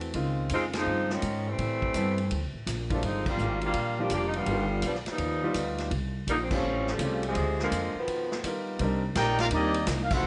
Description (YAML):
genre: jazz, big band swing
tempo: 166 BPM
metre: 4/4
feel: swing 65% on 8ths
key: C minor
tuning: A4 = 439 Hz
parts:
  - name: clear baby grand piano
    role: accompaniment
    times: 0.0-9.7 s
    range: Db3 to D5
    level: -36 LUFS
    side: equal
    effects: none
  - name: upright bass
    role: bass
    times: 0.0-10.3 s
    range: F1 to A2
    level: -34 LUFS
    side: equal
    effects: none
  - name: swinging big-band drum kit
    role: drums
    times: 0.0-10.2 s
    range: crash cymbal, hi-hat, kick drum, ride cymbal, snare drum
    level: -38 LUFS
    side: equal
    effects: none
  - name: mellow saxophone section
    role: melody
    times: 0.5-8.5 s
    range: B#2 to G4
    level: -32 LUFS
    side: equal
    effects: none
  - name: clear trombone section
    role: second line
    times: 8.0-10.3 s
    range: F2 to G4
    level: -35 LUFS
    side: equal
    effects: none
  - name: warm trombone section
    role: sustained chords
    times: 8.8-10.3 s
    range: C3 to Eb4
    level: -42 LUFS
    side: equal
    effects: none
  - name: clear trumpet section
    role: melody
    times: 9.2-10.3 s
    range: Bb3 to G5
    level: -30 LUFS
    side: equal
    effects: none
room: light reverb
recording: nothing above 10.3 kHz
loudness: -29 LUFS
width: mono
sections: 0.0-8.8 A section; 8.8-10.3 B section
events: band accent 0.7, 3.2, 6.5, 10.1; break 8.1-8.8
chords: 0.1 Dbmaj9; 1.6 Am7; 2.3 D7(no3); 3.0 Gm7; 4.5 G7b13; 5.9 C5; 6.6 A7alt; 7.4 Dm7b5; 8.1 G7alt; 8.8 Cm9